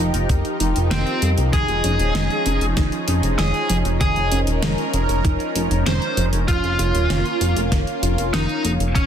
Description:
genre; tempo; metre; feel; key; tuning
synthwave; 97 BPM; 4/4; straight; unclear; A4 = 440 Hz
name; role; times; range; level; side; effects
lush unison pad; sustained chords; 0.0-9.1 s; Eb3 to Bb4; -24 LUFS; equal; chorus, phaser, sidechain pumping
soft round pluck; arpeggios; 0.0-9.1 s; Eb3 to Bb4; -29 LUFS; right 3 dB; chorus, digital delay
chorused synth bass; bass; 0.0-9.1 s; Eb1 to F2; -21 LUFS; equal; tube saturation, sidechain pumping
pop drum kit; drums; 0.1-9.1 s; hi-hat, snare drum; -27 LUFS; equal; none
electronic kick drum; drums; 0.3-9.1 s; none; -20 LUFS; equal; none
biting lead guitar; melody; 0.9-9.1 s; C4 to C5; -24 LUFS; right 1 dB; overdrive, ping-pong delay
room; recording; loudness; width
light reverb, digital ambience; dense, heavily limited modern master; -17 LUFS; side -9 dB against mid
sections
0.0-9.1 A section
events
none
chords
0.0 Eb; 1.5 Dbadd9; 6.5 Bbm

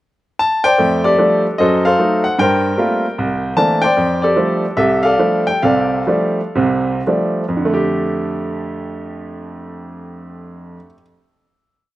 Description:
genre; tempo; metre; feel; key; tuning
solo jazz; 106-151 BPM; 4/4; swing 64% on 8ths; F major; A4 = 439 Hz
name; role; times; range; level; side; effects
bright grand piano; solo; 0.4-11.0 s; C2 to A5; -14 LUFS; equal; slapback echo
room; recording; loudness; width
light reverb; recorded outdoors, with no room sound; -13 LUFS; side -15 dB against mid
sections
0.0-0.8 pickup bar; 0.8-7.6 A section; 7.6-11.9 final chord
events
slowing down 4.0-7.6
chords
0.0 Csus2; 0.8 F69; 1.6 F#dim7; 2.4 Gm11; 3.2 C13; 4.0 F69

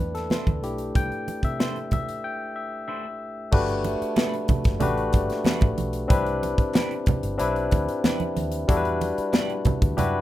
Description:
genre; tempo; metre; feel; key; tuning
lush 1970s-style soul; 93 BPM; 4/4; straight; unclear; A4 = 438 Hz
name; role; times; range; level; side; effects
barky tine electric piano; accompaniment; 0.0-10.2 s; G3 to G5; -26 LUFS; left 2 dB; overdrive, plate reverb
vintage muted fingered electric bass; bass; 0.0-10.2 s; F#1 to C3; -30 LUFS; equal; none
vibraphone with soft mallets; texture; 0.0-10.2 s; D5 to B5; -38 LUFS; right 7 dB; stereo widening
modern studio drum kit; drums; 0.1-10.1 s; crash cymbal, hi-hat, kick drum, snare drum; -23 LUFS; equal; none
electric guitar at the edge of break-up; riff; 0.3-9.5 s; A3 to C5; -35 LUFS; right 5 dB; phaser
congas; percussion; 0.3-10.1 s; none; -30 LUFS; right 5 dB; none
group handclap; percussion; 4.2-9.5 s; none; -42 LUFS; left 3 dB; none
room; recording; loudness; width
light reverb; rough home demo mix, faint mains hum; -22 LUFS; side -14 dB against mid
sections
0.0-3.5 A section; 3.5-10.2 B section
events
tine electric piano solo 0.0-3.5; break 2.2-3.5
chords
0.0 C69; 3.5 Gmaj9; 6.1 Cmaj7; 8.7 Em7

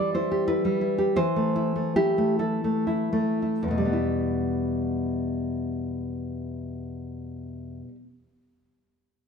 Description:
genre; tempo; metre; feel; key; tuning
romantic piece for solo classical guitar; 35-62 BPM (dotted quarters); 6/8; rubato; E minor; A4 = 440 Hz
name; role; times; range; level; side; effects
nylon-string guitar; solo; 0.0-8.1 s; E2 to D5; -24 LUFS; equal; none
room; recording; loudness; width
moderate recital hall reverb, RT60 1.7 s; close, detailed microphones; -24 LUFS; side -6 dB against mid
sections
0.0-3.9 A section; 3.9-9.3 B section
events
slowing down 0.0-3.9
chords
0.0 Em; 1.2 Am/E; 3.9 Em

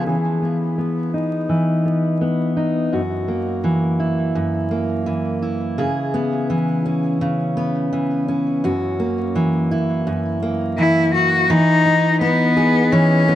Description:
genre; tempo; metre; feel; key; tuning
folktronica; 84 BPM; 4/4; swing 56% on 16ths; F# mixolydian; A4 = 440 Hz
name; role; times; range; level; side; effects
fingerpicked steel-string acoustic guitar; arpeggios; 0.0-13.3 s; F#2 to G#4; -18 LUFS; equal; low-pass filter, ping-pong delay
rich cello; melody; 10.8-13.3 s; B3 to F#4; -15 LUFS; left 2 dB; none
room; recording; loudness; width
light reverb; vinyl crackle; -17 LUFS; side -12 dB against mid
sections
0.1-11.5 A section; 11.5-13.3 B section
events
filter sweep on steel-string acoustic guitar 0.1-11.5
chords
0.1 Emaj7; 2.9 F#7; 5.8 C#m7; 8.6 F#7; 11.5 Emaj7

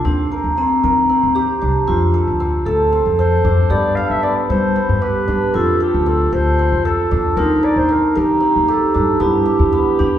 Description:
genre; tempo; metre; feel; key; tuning
contemporary instrumental, chamber music in an uneven meter; 230 BPM (eighths); 7/8; straight; unclear; A4 = 440 Hz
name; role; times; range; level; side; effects
cimbalom; arpeggios; 0.0-10.2 s; B3 to Bb4; -18 LUFS; right 2 dB; none
upright bass; bass; 0.0-10.2 s; C2 to G3; -19 LUFS; left 1 dB; none
vibraphone with medium hard mallets; second line; 0.1-10.2 s; C4 to A4; -19 LUFS; equal; none
mellow clarinet; melody; 3.2-10.2 s; G4 to F5; -20 LUFS; equal; none
room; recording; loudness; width
wet recital hall reverb, RT60 1.4 s; heard from further back in the room, nothing above 10.3 kHz; -14 LUFS; side -10 dB against mid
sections
0.0-10.2 A section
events
none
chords
0.1 Eb6; 1.9 F6; 3.7 Gadd9; 5.5 F6; 7.4 Eb6; 9.2 G

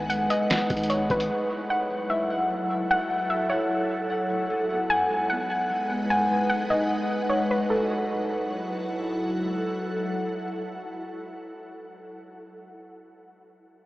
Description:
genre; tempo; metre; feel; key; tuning
hip hop, atmospheric cloud-rap; 150 BPM; 4/4; half-time; F# dorian; A4 = 440 Hz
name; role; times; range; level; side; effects
soft round pluck; melody; 0.0-8.9 s; A4 to G#5; -27 LUFS; equal; chorus, low-pass filter, diffuse ambient delay
ethereal airy pad; sustained chords; 0.0-11.7 s; F#3 to F#5; -28 LUFS; equal; ensemble chorus, built-in reverb, phaser, sidechain pumping
concert harp; arpeggios; 0.0-11.9 s; G#3 to F#5; -31 LUFS; left 1 dB; low-pass filter, diffuse ambient delay
warm 808-style bass; bass; 0.0-1.3 s; G#1; -34 LUFS; equal; none
lo-fi sampler-style drum kit; drums; 0.1-1.3 s; hi-hat, kick drum, snare drum; -28 LUFS; equal; none
room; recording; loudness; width
wet huge ambient reverb, RT60 8.9 s; dreamy mix soaked in reverb, small speaker sound; -24 LUFS; side -17 dB against mid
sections
0.0-7.7 A section; 7.7-10.9 B section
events
none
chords
0.0 G#m7; 1.3 F#m7; 4.5 G#m7; 7.7 F#m7

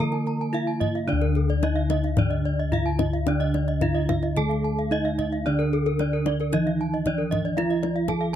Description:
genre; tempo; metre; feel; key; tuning
Balinese gamelan; 110 BPM; 4/4; straight; D pelog; A4 = 440 Hz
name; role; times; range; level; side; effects
gamelan-type bronze metallophone; melody; 0.0-8.4 s; D4 to Bb4-40c; -29 LUFS; right 2 dB; none
gamelan-type bronze metallophone; accompaniment; 0.0-8.4 s; D3 to Bb3-40c; -28 LUFS; right 3 dB; none
gamelan-type bronze metallophone; arpeggios; 0.0-8.2 s; A4-45c to Bb5-40c; -30 LUFS; left 3 dB; none
gamelan-type bossed gongs; bass; 0.0-8.4 s; D2 to E4+50c; -27 LUFS; left 2 dB; none
gamelan-type bronze metallophone; arpeggios; 0.1-8.4 s; Bb4-40c to A5-45c; -32 LUFS; right 5 dB; none
kendang; percussion; 0.1-8.2 s; none; -28 LUFS; left 3 dB; none
room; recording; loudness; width
little or no reverb; dark, warm production; -22 LUFS; side -10 dB against mid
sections
0.0-8.4 A section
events
none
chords
none

